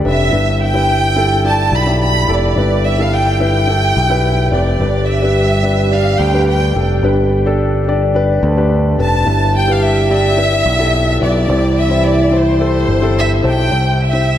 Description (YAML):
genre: piano-driven pop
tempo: 108 BPM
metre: 4/4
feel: straight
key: unclear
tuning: A4 = 440 Hz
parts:
  - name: dark baby grand piano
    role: accompaniment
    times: 0.0-14.4 s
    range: G2 to A5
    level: -17 LUFS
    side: left 2 dB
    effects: none
  - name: warm chamber violin section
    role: melody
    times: 0.1-14.4 s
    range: C5 to B5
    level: -17 LUFS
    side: right 1 dB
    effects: diffuse ambient delay
  - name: overdriven picked electric bass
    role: bass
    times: 0.1-14.4 s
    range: F1 to D2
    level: -16 LUFS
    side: equal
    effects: none
  - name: dark French horn section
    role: second line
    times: 4.8-13.4 s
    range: E3 to A4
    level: -19 LUFS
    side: right 3 dB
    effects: none
room: wet lush hall reverb, RT60 2.7 s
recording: dreamy mix soaked in reverb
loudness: -11 LUFS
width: side -11 dB against mid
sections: 0.0-13.7 A section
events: grand piano fill 12.9-13.7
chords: 0.3 Em; 4.8 G; 9.3 Em/G; 11.5 C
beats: | 0.33 0.89 1.45 2.01 | 2.57 3.12 3.68 4.24 | 4.80 5.36 5.92 6.47 | 7.03 7.59 8.15 8.71 | 9.26 9.82 10.38 10.94 | 11.49 12.05 12.61 13.17 | 13.73 14.29